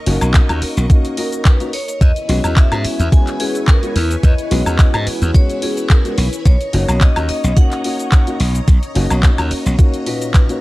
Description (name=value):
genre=nu-disco, nu disco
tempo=108 BPM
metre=4/4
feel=swing 54% on 16ths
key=B major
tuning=A4 = 440 Hz
part: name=string machine, full ensemble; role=sustained chords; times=0.0-10.6 s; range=E4 to C#6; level=-27 LUFS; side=equal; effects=ensemble chorus, sidechain pumping
part: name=dark grand piano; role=accompaniment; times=0.1-10.6 s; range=A#2 to F#4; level=-23 LUFS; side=left 2 dB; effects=none
part: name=glassy slap bass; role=bass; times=0.1-9.7 s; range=F#1 to G#2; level=-16 LUFS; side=equal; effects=sidechain pumping
part: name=house drum kit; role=drums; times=0.1-10.6 s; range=handclaps, hi-hat, shaker, woodblock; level=-23 LUFS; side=left 1 dB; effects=none
part: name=electronic kick drum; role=drums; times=0.3-10.5 s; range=none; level=-10 LUFS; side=equal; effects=overdrive
part: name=vibraphone with hard mallets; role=melody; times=1.2-10.6 s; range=G#4 to G#5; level=-25 LUFS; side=left 1 dB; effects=tape echo
room=little or no reverb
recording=dry, gritty hardware recording, cassette tape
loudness=-12 LUFS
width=side -19 dB against mid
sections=0.0-10.6 A section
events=none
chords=0.0 Bmaj9; 2.0 E6; 6.5 Bmaj9